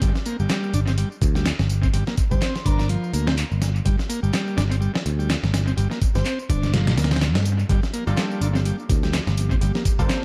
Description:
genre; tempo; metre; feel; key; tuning
breakbeat, breaks; 125 BPM; 4/4; swing 57% on 16ths; G minor; A4 = 442 Hz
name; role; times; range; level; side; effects
overdriven combo organ; riff; 0.0-10.2 s; F3 to D4; -31 LUFS; equal; vintage 12-bit sampler grit, analog delay
picked electric bass; bass; 0.0-10.1 s; G1 to G2; -24 LUFS; equal; none
dusty soul sampler-style drum kit; drums; 0.0-10.2 s; hi-hat, kick drum, snare drum; -26 LUFS; equal; studio reverb, analog delay
electronic tambourine and handclaps; drums; 0.0-10.2 s; none; -37 LUFS; equal; studio reverb, analog delay
airy dreamy lead; melody; 2.3-2.9, 6.2-6.3, 10.0-10.2 s; Bb4 to C5; -37 LUFS; equal; chorus, small speaker sound, analog delay
warbly tape-like pad; sustained chords; 8.0-10.2 s; F3 to G4; -36 LUFS; equal; chorus, built-in reverb, sidechain pumping
orchestra-hit-like synth stab; stabs; 8.1-10.2 s; Bb3 to A4; -36 LUFS; equal; built-in reverb, analog delay
room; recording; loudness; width
little or no reverb; echo-heavy mix, vinyl crackle; -22 LUFS; mono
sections
0.0-10.2 A section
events
none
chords
0.0 Gm7

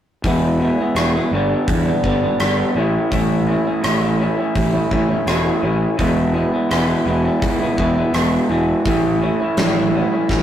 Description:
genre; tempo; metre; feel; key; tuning
quiet-loud alternative rock; 84 BPM; 4/4; straight; E major; A4 = 440 Hz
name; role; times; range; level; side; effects
electric guitar through a small old amp; arpeggios; 0.2-10.4 s; G2 to E4; -18 LUFS; equal; none
fuzz fingered electric bass; bass; 0.2-10.4 s; E1 to E2; -21 LUFS; equal; overdrive
huge arena drum kit; drums; 0.2-10.4 s; hi-hat, kick drum, rim click, snare drum; -23 LUFS; equal; none
room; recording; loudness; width
moderate stone room reverb, RT60 1.0 s; rough rehearsal-room recording, warm saturation; -15 LUFS; side -10 dB against mid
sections
0.2-10.4 A section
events
none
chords
0.2 E; 1.3 G; 2.8 A; 6.0 E; 8.9 A

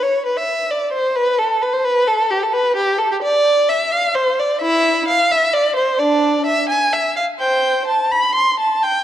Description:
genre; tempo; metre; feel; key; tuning
classical, baroque-style suite movement for unaccompanied violin; 87 BPM (dotted quarters); 12/8; rubato; unclear; A4 = 440 Hz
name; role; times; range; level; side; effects
warm violin; solo; 0.0-9.0 s; D4 to C6; -14 LUFS; equal; none
room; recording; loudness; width
moderate concert hall reverb, RT60 2.0 s; dark, warm production; -14 LUFS; side -11 dB against mid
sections
0.0-9.0 A section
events
none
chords
none

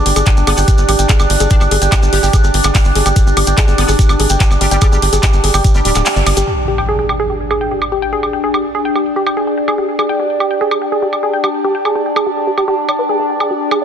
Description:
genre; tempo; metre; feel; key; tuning
psychedelic trance; 145 BPM; 4/4; straight; unclear; A4 = 442 Hz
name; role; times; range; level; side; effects
overtone-sweeping drone; sustained chords; 0.0-13.8 s; D4; -19 LUFS; equal; chorus, built-in reverb, sidechain pumping
woody wave-folded pluck; riff; 0.0-13.8 s; G4 to Ab5; -18 LUFS; moving between left 5 dB and right 4 dB; chorus, auto-pan, sidechain pumping, digital delay
tight sequencer bass; bass; 0.0-6.4 s; D1 to Ab1; -15 LUFS; equal; none
warbly tape-like pad; texture; 0.0-13.8 s; G4 to G5; -23 LUFS; right 3 dB; chorus, built-in reverb, sidechain pumping
drum and bass drum kit; drums; 0.1-13.8 s; handclaps, hi-hat, woodblock; -18 LUFS; equal; low-pass filter on hats, low-pass filter on perc, soft clipping on snare, low-pass filter on snare, low-pass filter on room
maracas; percussion; 0.2-6.5 s; none; -24 LUFS; right 3 dB; none
electronic kick drum; drums; 0.3-5.7 s; none; -12 LUFS; equal; none
metallic wobble bass; second line; 0.5-5.9 s; G3 to G4; -28 LUFS; left 3 dB; chorus, sidechain pumping, high-pass filter, digital delay
impact; sound effects; 6.5-8.1 s; none; -23 LUFS; equal; none
room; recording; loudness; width
light reverb; dense, heavily limited modern master; -11 LUFS; side -8 dB against mid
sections
0.0-6.5 A section; 6.5-13.8 B section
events
kick drops out 6.1-6.5; band accent 6.1; impact 6.5-8.1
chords
0.0 G5

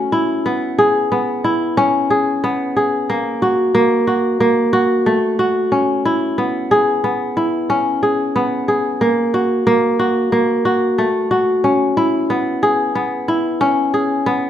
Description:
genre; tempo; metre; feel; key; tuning
contemporary instrumental, contemporary; 182 BPM (eighths); 9/8; straight; unclear; A4 = 441 Hz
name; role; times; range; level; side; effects
kora; solo; 0.0-14.5 s; A3 to G#4; -14 LUFS; equal; none
room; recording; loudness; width
light reverb; minimal, uncompressed stereo recording; -14 LUFS; side -10 dB against mid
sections
0.0-14.5 A section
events
none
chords
0.1 E; 1.8 G#madd11/B; 3.1 F#; 4.7 A6; 6.1 E; 7.7 G#madd11/B; 9.0 F#; 10.7 A6; 12.0 E; 13.6 G#madd11/B

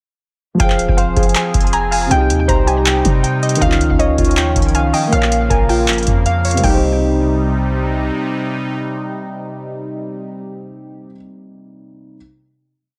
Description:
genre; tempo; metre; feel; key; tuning
hip hop, trap; 159 BPM; 4/4; half-time; C phrygian; A4 = 439 Hz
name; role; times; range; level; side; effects
dark concert grand piano; accompaniment; 0.5-12.2 s; C3 to F5; -24 LUFS; equal; low-pass filter
warbly dusty pluck; second line; 0.6-7.7 s; Eb5 to Bb5; -25 LUFS; equal; chorus, digital delay
sweeping resonant pad; sustained chords; 0.6-10.4 s; C3 to Ab4; -26 LUFS; equal; chorus
soft electric-piano-like synth keys; arpeggios; 0.6-11.1 s; C4 to Ab5; -23 LUFS; equal; chorus, low-pass filter, digital delay
clean 808-style bass; bass; 0.6-8.1 s; Eb1 to C3; -20 LUFS; equal; none
booming analog drum machine; drums; 0.6-6.8 s; crash cymbal, handclaps, hi-hat, kick drum; -19 LUFS; equal; none
room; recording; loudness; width
light reverb; none; -15 LUFS; mono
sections
0.6-6.6 hook; 6.6-9.7 final chord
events
none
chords
0.6 Fm; 2.1 Cm; 3.6 Dbadd9; 5.1 Bbm; 6.6 Cm

